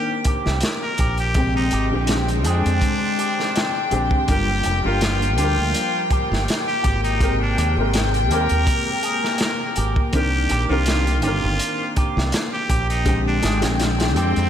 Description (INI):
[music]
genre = trip hop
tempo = 82 BPM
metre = 4/4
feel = swing 54% on 16ths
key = unclear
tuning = A4 = 440 Hz
[part]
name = trumpet with straight mute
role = melody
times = 0.0-14.5 s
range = C4 to Bb4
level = -25 LUFS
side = equal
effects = vintage 12-bit sampler grit, dub echo
[part]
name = warm upright piano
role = accompaniment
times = 0.0-14.5 s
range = C3 to G5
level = -26 LUFS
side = left 2 dB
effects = tremolo, tape echo
[part]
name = rich chamber string section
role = sustained chords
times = 0.0-14.5 s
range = C3 to G5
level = -26 LUFS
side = left 2 dB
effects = none
[part]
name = electric guitar with an envelope filter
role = arpeggios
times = 0.0-14.5 s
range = G4 to Ab4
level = -30 LUFS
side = right 3 dB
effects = tape echo
[part]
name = crunchy breakbeat drum kit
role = drums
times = 0.2-14.5 s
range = hi-hat, kick drum, snare drum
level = -23 LUFS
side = equal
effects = none
[part]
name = modern bright fingered electric bass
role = bass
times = 0.5-14.5 s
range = F1 to F2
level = -22 LUFS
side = equal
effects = none
[sound]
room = moderate lush hall reverb, RT60 2.7 s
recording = dreamy mix soaked in reverb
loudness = -18 LUFS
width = side -9 dB against mid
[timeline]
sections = 0.0-14.5 A section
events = none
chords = 0.0 Cm9; 1.4 Bb13; 4.3 Gm7; 7.2 Abmaj9; 10.1 Cm9; 13.1 Bb13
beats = 0.62 | 1.35 2.09 2.82 3.55 | 4.28 5.01 5.75 6.48 | 7.21 7.94 8.67 9.40 | 10.14 10.87 11.60 12.33 | 13.06 13.79